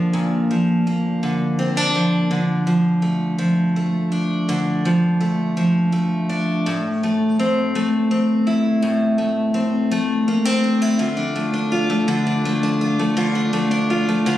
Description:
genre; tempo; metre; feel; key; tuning
pop; 55 BPM (dotted quarters); 6/8; straight; D minor; A4 = 438 Hz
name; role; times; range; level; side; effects
picked steel-string acoustic guitar; solo; 0.0-14.4 s; A2 to F4; -17 LUFS; equal; none
room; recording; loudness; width
moderate plate reverb, RT60 2.9 s; recorded on a phone in the room, studio reverb, compression; -17 LUFS; side -13 dB against mid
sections
0.0-2.3 A section; 2.3-11.0 B section; 11.0-14.4 C section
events
none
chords
0.0 Bb; 2.3 Dm; 6.7 Am; 11.0 Dm

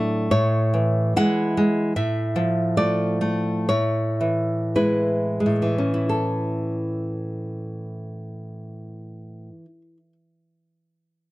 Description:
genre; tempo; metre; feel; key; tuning
romantic piece for solo classical guitar; 43-77 BPM; 2/4; rubato; A major; A4 = 442 Hz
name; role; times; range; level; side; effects
nylon-string guitar; solo; 0.0-10.1 s; A2 to F#5; -21 LUFS; equal; none
room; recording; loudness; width
little or no reverb; dry, close 1970s-style studio recording; -20 LUFS; side -18 dB against mid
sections
0.0-6.1 A section; 6.1-11.3 B section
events
slowing down 1.2-6.1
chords
0.3 E/A; 2.0 Dm/A; 3.7 E/A; 6.1 A

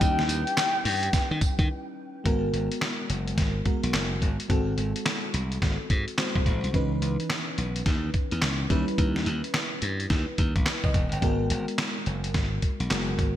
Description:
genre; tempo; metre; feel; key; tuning
R&B, new jack swing; 107 BPM; 4/4; swing 63% on 16ths; G# minor; A4 = 435 Hz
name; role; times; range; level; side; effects
soft octave-layered synth lead; melody; 0.0-1.7 s; G5; -29 LUFS; left 2 dB; chorus, ping-pong delay
FM electric piano with soft pad layer; accompaniment; 0.0-13.4 s; E3 to G5; -32 LUFS; equal; chorus
glassy slap bass; bass; 0.0-13.3 s; E1 to D#3; -28 LUFS; equal; none
dusty soul sampler-style drum kit; drums; 0.0-13.4 s; handclaps, hi-hat, kick drum, snare drum, tambourine; -27 LUFS; equal; gated reverb
room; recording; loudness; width
light reverb; bright 1980s-style digital production; -24 LUFS; side -12 dB against mid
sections
0.0-2.3 A section; 2.3-13.4 B section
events
break 1.7-2.3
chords
0.0 D#7b9b13; 2.3 G#m9; 4.5 G#7b9; 6.7 C#m9; 8.7 D#7b9b13; 11.2 G#m9

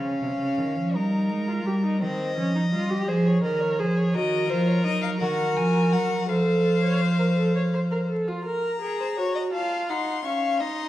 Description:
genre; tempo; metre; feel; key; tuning
classical, baroque-style fugue for string quartet; 56 BPM (dotted quarters); 6/8; straight; unclear; A4 = 438 Hz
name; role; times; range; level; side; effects
warm violin; second line; 0.0-10.9 s; Gb4 to Gb5; -30 LUFS; left 3 dB; none
rich viola; accompaniment; 0.0-10.9 s; C4 to Db5; -27 LUFS; right 2 dB; none
warm cello; bass; 0.0-8.1 s; C3 to Ab3; -24 LUFS; right 1 dB; none
rich violin; melody; 4.1-10.9 s; C5 to Db6; -31 LUFS; left 8 dB; none
room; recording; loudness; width
wet recital hall reverb, RT60 1.7 s; dark, warm production, vinyl crackle; -22 LUFS; side -14 dB against mid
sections
0.0-8.5 A section; 8.5-10.9 B section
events
none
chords
0.0 Db; 0.9 Fm11/G; 2.0 Cm/Eb; 3.1 Fm7; 4.1 Cm7b5/Eb (rootless); 6.3 F; 8.5 N.C.; 9.5 F

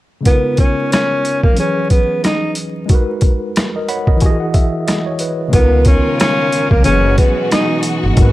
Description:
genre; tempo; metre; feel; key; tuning
hip hop, boom-bap hip-hop; 91 BPM; 4/4; swing 57% on 16ths; unclear; A4 = 440 Hz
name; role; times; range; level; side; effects
tine electric piano; accompaniment; 0.2-8.3 s; C#3 to B5; -19 LUFS; equal; overdrive, fast stereo tremolo
breathy tenor saxophone; melody; 0.3-7.8 s; A#3 to D#4; -16 LUFS; equal; analog delay
boom bap sampler-style drum kit; drums; 0.3-8.3 s; hi-hat, kick drum, rim click, snare drum; -13 LUFS; equal; overdrive
bright studio string section; sustained chords; 5.5-8.3 s; A#2 to A#4; -22 LUFS; equal; none
upright bass; bass; 5.5-8.3 s; F#1 to C#2; -14 LUFS; equal; none
room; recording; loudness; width
little or no reverb; dry, gritty hardware recording, vinyl crackle; -12 LUFS; side -16 dB against mid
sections
0.3-5.5 A section; 5.5-8.3 B section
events
tine electric piano fill 3.6-5.5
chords
0.3 C#13; 1.6 F#9sus4; 2.9 G#m9; 4.2 Emaj7; 5.5 C#13; 6.9 F#9sus4

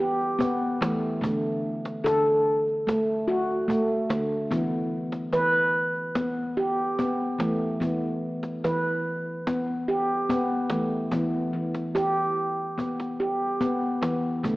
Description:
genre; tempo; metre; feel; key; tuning
world meditative, meditative tuned percussion; 73 BPM; 4/4; straight; E minor; A4 = 441 Hz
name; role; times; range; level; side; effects
handpan; arpeggios; 0.0-14.6 s; D3 to B4; -24 LUFS; equal; none
cajon; percussion; 0.2-14.6 s; none; -34 LUFS; equal; none
room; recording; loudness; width
wet echo chamber reverb, RT60 2.1 s; worn, warbling old tape, cassette tape, warbly pitch drift, AM radio sound; -24 LUFS; side -19 dB against mid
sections
0.0-11.1 A section; 11.1-14.6 B section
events
none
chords
0.0 Em; 1.2 D; 4.5 Em

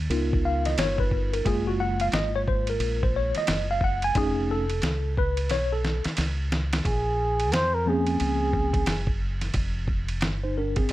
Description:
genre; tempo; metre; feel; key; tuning
hip hop, jazz-hop; 89 BPM; 4/4; swing 61% on 16ths; Bb minor; A4 = 436 Hz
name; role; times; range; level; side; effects
deep dub fingered electric bass; bass; 0.0-10.9 s; F1 to F2; -28 LUFS; equal; none
tine electric piano; accompaniment; 0.1-10.9 s; F3 to Ab5; -26 LUFS; left 1 dB; overdrive, fast stereo tremolo, plate reverb
dusty soul sampler-style drum kit; drums; 0.1-10.9 s; hi-hat, kick drum, ride cymbal, snare drum; -28 LUFS; equal; overdrive
breathy flugelhorn; melody; 6.9-9.2 s; Ab4 to C5; -26 LUFS; right 1 dB; plate reverb
room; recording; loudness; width
light reverb; none; -23 LUFS; side -16 dB against mid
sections
0.0-6.8 A section; 6.8-10.9 B section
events
tine electric piano solo 0.0-6.8; drum fill 5.5-6.8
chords
0.1 Db13; 1.5 Gbmaj9; 4.2 Faug7; 6.8 Bbm9; 9.5 Fsus2

